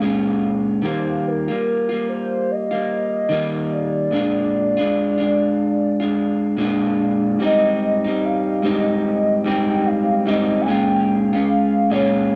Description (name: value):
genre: indie pop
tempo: 73 BPM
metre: 4/4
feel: swing 60% on 16ths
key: unclear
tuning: A4 = 440 Hz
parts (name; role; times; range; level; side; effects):
- hollow clarinet-like synth lead; melody; 0.0-12.4 s; Bb4 to Ab5; -24 LUFS; equal; lush chorus, cassette tape, analog delay
- electric guitar through a small old amp; accompaniment; 0.0-12.4 s; Ab2 to F4; -21 LUFS; equal; subtle chorus, warbly pitch drift, cassette tape
room: moderate booth ambience, RT60 0.2 s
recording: home recording on cassette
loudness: -20 LUFS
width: mono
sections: 0.0-7.4 A section; 7.4-12.4 B section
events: none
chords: 0.0 Bbm7; 0.8 Ebadd9; 4.1 Bb7; 7.4 Abmaj7; 10.7 Bbm7